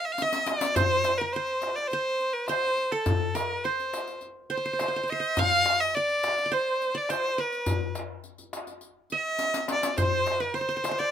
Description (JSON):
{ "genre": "Arabic maqam ensemble", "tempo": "104 BPM", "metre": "4/4", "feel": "straight", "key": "C maqam rast", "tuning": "A4 = 442 Hz", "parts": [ { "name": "clear violin", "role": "melody", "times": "0.0-11.1 s", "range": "A4 to F5", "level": "-26 LUFS", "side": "equal", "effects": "none" }, { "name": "qanun", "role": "second line", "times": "0.0-11.1 s", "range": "A4 to F5", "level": "-32 LUFS", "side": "right 5 dB", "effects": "none" }, { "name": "darbuka", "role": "percussion", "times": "0.2-11.0 s", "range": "none", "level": "-31 LUFS", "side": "left 3 dB", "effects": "none" }, { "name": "riq", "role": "percussion", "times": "0.2-11.1 s", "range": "none", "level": "-37 LUFS", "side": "left 4 dB", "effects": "none" } ], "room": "light reverb", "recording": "minimal, uncompressed stereo recording", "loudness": "-24 LUFS", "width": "side -9 dB against mid", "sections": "0.8-11.1 A section", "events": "drum fill 0.2-0.8, 9.4-10.0", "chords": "none", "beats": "0.19 | 0.77 1.34 1.92 2.49 | 3.06 3.64 4.21 4.79 | 5.37 5.94 6.52 7.09 | 7.67 8.24 8.82 9.40 | 9.97 10.55" }